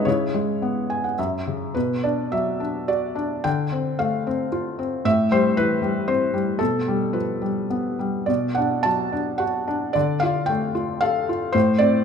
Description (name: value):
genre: classical, lyrical solo piano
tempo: 103-119 BPM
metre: 3/4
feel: rubato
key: unclear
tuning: A4 = 441 Hz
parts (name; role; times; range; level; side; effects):
- felt-muted upright piano; solo; 0.0-12.0 s; F#2 to A5; -20 LUFS; left 1 dB; none
room: moderate recital hall reverb, RT60 1.5 s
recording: minimal, uncompressed stereo recording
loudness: -20 LUFS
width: side -7 dB against mid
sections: 0.0-1.8 A section; 1.8-12.0 B section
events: felt piano fill 0.6-1.8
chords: 0.0 C#m7; 1.2 F#5; 1.8 Bm; 3.4 Dm7; 5.1 Am7; 6.6 G7/B; 8.3 Bm7; 10.0 Dm; 11.5 Am